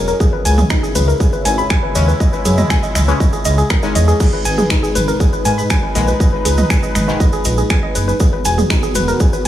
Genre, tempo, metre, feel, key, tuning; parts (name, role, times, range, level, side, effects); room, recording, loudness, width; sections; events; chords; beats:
melodic techno; 120 BPM; 4/4; straight; G# minor; A4 = 442 Hz
sweeping resonant pad; sustained chords; 0.0-9.5 s; C#3 to B4; -23 LUFS; right 1 dB; chorus, vintage 12-bit sampler grit, sidechain pumping
woody wave-folded pluck; arpeggios; 0.0-9.5 s; D#4 to B5; -20 LUFS; left 1 dB; chorus, sidechain pumping, dub echo
swelling detuned saw bass; bass; 0.0-9.5 s; E1 to G#2; -16 LUFS; equal; sidechain pumping
tube shaker; percussion; 0.1-9.4 s; -27 LUFS; right 3 dB
electronic kick drum; drums; 0.2-9.3 s; -16 LUFS; equal; distortion, studio reverb
techno drum kit; drums; 0.5-9.5 s; crash cymbal, finger snaps, hi-hat, toms; -21 LUFS; right 1 dB; studio reverb
synth brass stab; stabs; 2.0-7.2 s; G#2 to C#4; -25 LUFS; left 4 dB; chorus, phaser, cassette tape, sidechain pumping, dub echo
little or no reverb; small room ambience; -12 LUFS; side -12 dB against mid
0.0-9.5 A section
0.2 C#m; 4.2 G#m; 8.2 Esus2
| 0.20 0.70 1.20 1.70 | 2.20 2.70 3.20 3.70 | 4.20 4.70 5.20 5.70 | 6.20 6.70 7.20 7.70 | 8.20 8.70 9.20